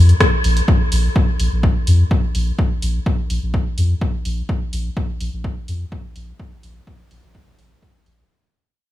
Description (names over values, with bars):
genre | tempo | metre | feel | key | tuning
dub techno | 126 BPM | 4/4 | straight | unclear | A4 = 440 Hz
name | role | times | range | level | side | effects
soft dub sub bass | bass | 0.0-8.2 s | Bb1 to F2 | -15 LUFS | equal | sidechain pumping
punchy analog drum machine | drums | 0.1-8.2 s | hi-hat, rim click | -24 LUFS | equal | dub echo
electronic kick drum | drums | 0.2-7.9 s | none | -18 LUFS | equal | none
room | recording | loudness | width
digital ambience | studio reverb | -16 LUFS | side -14 dB against mid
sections
0.7-8.3 A section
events
fade-out 0.7-8.3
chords
none